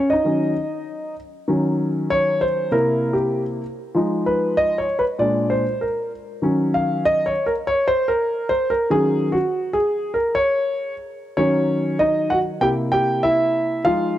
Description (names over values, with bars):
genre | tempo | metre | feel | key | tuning
hip hop | 97 BPM | 4/4 | swing 60% on 16ths | Eb dorian | A4 = 439 Hz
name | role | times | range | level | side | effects
dark concert grand piano | solo | 0.0-14.2 s | Bb2 to G5 | -18 LUFS | equal | none
room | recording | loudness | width
light reverb | dark, warm production | -18 LUFS | side -13 dB against mid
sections
0.0-1.5 A section; 1.5-11.4 B section; 11.4-14.2 C section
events
grand piano solo 0.0-1.5, 1.5-11.4, 11.4-14.2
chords
0.0 Ebm7; 2.7 C7; 4.0 Fm7b5; 5.2 Bb7; 6.4 Ebm7; 12.6 C7